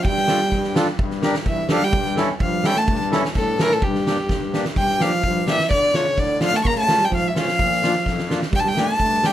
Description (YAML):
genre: klezmer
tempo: 128 BPM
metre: 2/4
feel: straight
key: G dorian sharp4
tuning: A4 = 441 Hz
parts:
  - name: rich violin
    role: melody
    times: 0.0-9.3 s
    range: G4 to C#6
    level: -21 LUFS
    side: left 1 dB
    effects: none
  - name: breathy trombone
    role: second line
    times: 0.0-9.3 s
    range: G2 to Bb3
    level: -25 LUFS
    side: right 3 dB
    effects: none
  - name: accordion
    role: accompaniment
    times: 0.0-9.3 s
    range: F2 to Bb4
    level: -24 LUFS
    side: left 2 dB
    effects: none
  - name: oversized low-tuned drum kit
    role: drums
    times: 0.0-9.3 s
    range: kick drum, snare drum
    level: -23 LUFS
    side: equal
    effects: none
room: moderate small room reverb, RT60 0.5 s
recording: lossy compression artefacts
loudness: -17 LUFS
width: side -12 dB against mid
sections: 0.0-4.8 A section; 4.8-9.3 B section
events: drum fill 4.3-4.8, 8.1-8.5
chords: 0.1 Dm/G; 1.0 Gm; 1.9 A7/G; 3.8 Gm; 5.7 Dm; 6.6 C#; 7.6 Bb; 8.5 Gm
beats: | 0.06 0.53 | 1.00 1.47 | 1.94 2.41 | 2.88 3.35 | 3.82 4.29 | 4.76 5.24 | 5.71 6.18 | 6.65 7.12 | 7.59 8.06 | 8.53 9.00